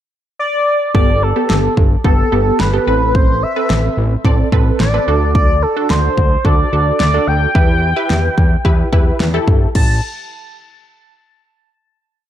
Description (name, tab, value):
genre	synth-pop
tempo	109 BPM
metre	4/4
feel	straight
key	unclear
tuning	A4 = 440 Hz
part	octave-doubled lead	melody	0.4-10.0 s	A4 to A5	-18 LUFS	equal	chorus, ping-pong delay
part	funky polysynth comp	accompaniment	0.9-9.7 s	B3 to D5	-19 LUFS	right 2 dB	chorus
part	fat analog bass	bass	0.9-10.0 s	G1 to E2	-16 LUFS	equal	none
part	pop drum kit	drums	0.9-9.9 s	crash cymbal, kick drum, snare drum	-15 LUFS	equal	none
room	light reverb, digital ambience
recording	dark, warm production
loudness	-12 LUFS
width	side -11 dB against mid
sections	0.0-0.9 pickup bar; 0.9-9.8 verse; 9.8-12.0 final note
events	none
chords	0.0 N.C.; 0.9 Gadd9; 2.9 Amadd9; 5.1 D; 7.6 Em; 9.8 N.C.